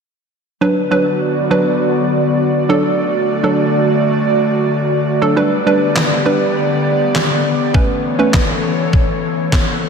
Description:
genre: dance-pop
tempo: 101 BPM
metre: 4/4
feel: straight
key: B minor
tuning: A4 = 440 Hz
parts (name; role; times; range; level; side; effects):
- hollow square pluck; accompaniment; 0.6-9.0 s; F#3 to B4; -17 LUFS; right 1 dB; chorus
- airy breathy pad; sustained chords; 0.9-9.9 s; D3 to D5; -16 LUFS; equal; chorus, sidechain pumping
- detuned 8-bit digital drum machine; drums; 6.0-9.7 s; handclaps, kick drum, snare drum; -17 LUFS; equal; none
room: wet cathedral reverb, RT60 6.0 s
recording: dreamy mix soaked in reverb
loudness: -13 LUFS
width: side -6 dB against mid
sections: 0.6-9.9 A section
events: none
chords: 0.6 Bm; 2.7 D; 5.4 G; 7.7 Aadd9

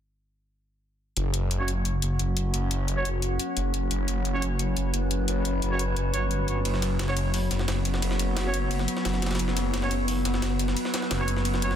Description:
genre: dark technical drum and bass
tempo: 175 BPM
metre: 4/4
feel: straight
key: unclear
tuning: A4 = 437 Hz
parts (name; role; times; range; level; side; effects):
- metallic inharmonic drone; sustained chords; 2.0-11.8 s; F#3 to B4; -30 LUFS; left 1 dB; chorus, built-in reverb
- phased detuned saw bass; bass; 1.2-11.8 s; F#1 to G1; -26 LUFS; equal; phaser, overdrive
- electronic hi-hat; drums; 1.2-11.7 s; none; -33 LUFS; left 4 dB; none
- warm brass ensemble; stabs; 1.6-11.7 s; C#4 to C#5; -34 LUFS; right 3 dB; low-pass filter, dub echo
- jungle sampler-style drum kit; drums; 6.7-11.8 s; hi-hat, ride cymbal, snare drum; -34 LUFS; right 1 dB; high-pass filter on cymbals, high-pass filter on snare, high-pass filter on hats
room: light reverb, digital ambience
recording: dense, heavily limited modern master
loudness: -24 LUFS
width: side -9 dB against mid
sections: 1.2-11.8 A section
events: filter sweep on synth drone 1.2-11.8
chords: 1.2 F#5

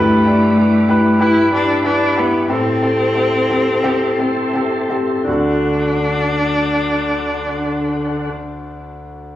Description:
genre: pop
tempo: 82-96 BPM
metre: 4/4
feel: straight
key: D mixolydian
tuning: A4 = 440 Hz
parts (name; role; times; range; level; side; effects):
- warm cello; melody; 0.0-8.3 s; A3 to E4; -17 LUFS; left 1 dB; plate reverb
- warm concert grand piano; accompaniment; 0.0-9.4 s; D2 to D5; -17 LUFS; equal; plate reverb, slapback echo
- tonewheel organ; sustained chords; 0.0-8.3 s; D3 to D6; -24 LUFS; equal; chorus vibrato, slow rotary speaker, plate reverb
room: wet club reverb, RT60 0.5 s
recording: live gig heard through the venue's PA, club reverb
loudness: -14 LUFS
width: side -13 dB against mid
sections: 0.0-5.3 A section; 5.3-8.2 B section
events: slowing down 0.0-5.3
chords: 0.0 G6; 2.5 Am7; 5.3 D

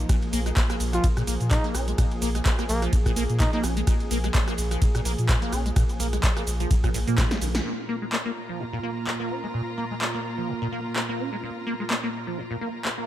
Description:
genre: acid house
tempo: 127 BPM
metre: 4/4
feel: swing 56% on 16ths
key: unclear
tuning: A4 = 440 Hz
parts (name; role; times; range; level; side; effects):
- warm analog pad; sustained chords; 0.0-13.1 s; Bb2 to Ab4; -33 LUFS; right 1 dB; chorus, sidechain pumping
- warm sub bass; bass; 0.0-7.6 s; Bb1 to Bb2; -26 LUFS; equal; tube saturation, sidechain pumping
- liquid acid bass; riff; 0.1-13.1 s; Ab2 to Db4; -31 LUFS; equal; phaser, lush chorus, sidechain pumping, dub echo
- electronic kick drum; drums; 0.1-7.3 s; none; -23 LUFS; equal; none
- punchy analog drum machine; drums; 0.1-13.0 s; handclaps, hi-hat, ride cymbal, rim click, shaker, snare drum; -30 LUFS; equal; overdrive
- trumpet with bucket mute; melody; 0.9-3.6 s; Bb3 to F4; -32 LUFS; equal; ping-pong delay
- clear studio string section; texture; 7.7-13.1 s; F4 to Bb5; -36 LUFS; equal; sidechain pumping
room: light reverb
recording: none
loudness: -23 LUFS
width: side -12 dB against mid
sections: 0.0-7.7 A section; 7.7-13.1 B section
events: drop 0.0-7.7; drum fill 7.2-7.7; band accent 7.5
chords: 0.0 Bb5

